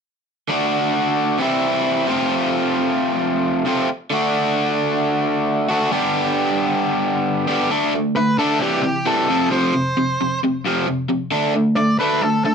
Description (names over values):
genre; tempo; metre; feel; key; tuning
rock; 133 BPM; 4/4; straight; unclear; A4 = 442 Hz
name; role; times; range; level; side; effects
overdriven electric guitar; riff; 0.5-12.5 s; F2 to G4; -17 LUFS; equal; none
octave-fuzz lead guitar; melody; 8.2-12.5 s; G4 to D5; -20 LUFS; equal; distortion
room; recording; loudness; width
wet studio ambience, RT60 0.5 s; none; -17 LUFS; side -6 dB against mid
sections
0.5-7.7 A section; 7.7-12.5 B section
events
none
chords
0.5 D; 1.4 C; 2.1 F; 4.1 D; 5.9 G; 7.7 D5; 8.6 C; 9.3 F5; 11.3 D5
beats
| 0.49 0.94 1.40 1.85 | 2.30 2.75 3.21 3.66 | 4.11 4.56 5.01 5.47 | 5.92 6.37 6.82 7.27 | 7.72 8.17 8.62 9.07 | 9.52 9.97 10.42 10.87 | 11.32 11.77 12.22